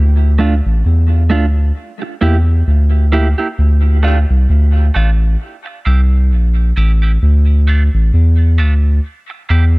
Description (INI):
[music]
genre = dub reggae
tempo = 66 BPM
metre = 4/4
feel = swing 57% on 16ths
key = D minor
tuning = A4 = 436 Hz
[part]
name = soft dub sub bass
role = bass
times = 0.0-9.8 s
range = A1 to E2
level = -10 LUFS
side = equal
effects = none
[part]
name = clean electric guitar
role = accompaniment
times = 0.4-9.6 s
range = A3 to G4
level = -21 LUFS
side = right 3 dB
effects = high-pass filter, tape echo
[sound]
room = little or no reverb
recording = none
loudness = -10 LUFS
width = side -24 dB against mid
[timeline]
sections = 0.0-9.8 A section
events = filter sweep on clean electric guitar 0.0-9.8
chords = 0.0 Dm; 1.8 Edim; 3.6 Dm; 5.4 Edim; 7.2 Dm; 9.0 Edim